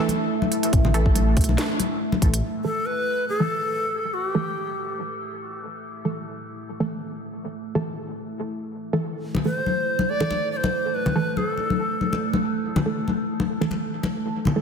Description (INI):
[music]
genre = deep dubstep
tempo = 141 BPM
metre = 4/4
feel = swing 54% on 16ths, half-time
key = unclear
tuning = A4 = 440 Hz
[part]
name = deep dark ambient pad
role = sustained chords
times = 0.0-14.6 s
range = A3 to A5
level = -30 LUFS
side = right 1 dB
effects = chorus, built-in reverb
[part]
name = filtered dub chord stab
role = stabs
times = 0.0-14.6 s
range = E3 to A4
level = -29 LUFS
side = right 2 dB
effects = chorus, dub echo
[part]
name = garage drum kit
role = drums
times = 0.1-2.4 s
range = hi-hat, snare drum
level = -29 LUFS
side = right 1 dB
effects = none
[part]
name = congas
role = percussion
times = 0.1-2.2, 9.3-14.5 s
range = none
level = -26 LUFS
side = left 3 dB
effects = none
[part]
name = dark detuned saw bass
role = bass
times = 0.7-2.4 s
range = A1 to B1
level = -21 LUFS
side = equal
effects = none
[part]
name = electronic kick drum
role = drums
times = 0.7-2.3 s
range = none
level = -22 LUFS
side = equal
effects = none
[part]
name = bright reedy long shakuhachi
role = melody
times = 2.6-5.0, 9.5-12.2 s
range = G4 to D5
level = -27 LUFS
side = equal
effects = dub echo
[sound]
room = moderate echo chamber reverb, RT60 2.1 s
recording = dense, heavily limited modern master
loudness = -22 LUFS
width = side -6 dB against mid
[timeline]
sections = 0.0-2.4 A section; 2.4-14.6 B section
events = filter sweep on ambient pad 2.4-14.6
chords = 0.0 A5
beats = 0.30 | 0.73 1.16 1.58 2.01 | 2.43 2.86 3.28 3.71 | 4.13 4.56 4.99 5.41 | 5.84 6.26 6.69 7.11 | 7.54 7.96 8.39 8.82 | 9.24 9.67 10.09 10.52 | 10.94 11.37 11.79 12.22 | 12.64 13.07 13.50 13.92 | 14.35